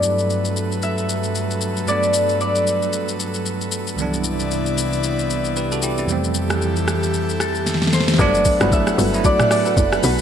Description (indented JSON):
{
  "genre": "amapiano",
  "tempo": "114 BPM",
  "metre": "4/4",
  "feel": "swing 58% on 16ths",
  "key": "G major",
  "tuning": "A4 = 440 Hz",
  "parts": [
    { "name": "Celtic harp", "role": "melody", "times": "0.0-10.2 s", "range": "A4 to E5", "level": "-21 LUFS", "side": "equal", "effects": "ping-pong delay" },
    { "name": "bell-like tine electric piano", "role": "accompaniment", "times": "0.0-10.2 s", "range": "C2 to B4", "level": "-24 LUFS", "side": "right 3 dB", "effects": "fast stereo tremolo" },
    { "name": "airy breathy pad", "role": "sustained chords", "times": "0.0-10.2 s", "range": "F2 to F#5", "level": "-24 LUFS", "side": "left 1 dB", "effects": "chorus" },
    { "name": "smooth R&B drum kit", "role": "drums", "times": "0.0-10.2 s", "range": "hi-hat, kick drum, rim click, shaker, snare drum, toms", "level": "-23 LUFS", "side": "left 1 dB", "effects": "vintage 12-bit sampler grit, gated reverb" },
    { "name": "soft round pluck", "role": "stabs", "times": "8.2-10.2 s", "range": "F#4 to B4", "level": "-27 LUFS", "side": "left 10 dB", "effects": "chorus, ping-pong delay" },
    { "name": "tight log drum bass", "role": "bass", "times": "8.2-10.2 s", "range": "F#1 to B1", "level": "-22 LUFS", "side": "equal", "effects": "none" }
  ],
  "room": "moderate lush hall reverb, RT60 2.1 s",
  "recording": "bright 1980s-style digital production",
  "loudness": "-17 LUFS",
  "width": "side -8 dB against mid",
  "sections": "0.0-8.2 A section; 8.2-10.2 B section",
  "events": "drum fill 7.7-8.2; drop 8.2-10.2",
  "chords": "0.0 Gmaj9; 4.0 Cmaj9; 6.1 Fmaj9; 8.2 Gmaj9"
}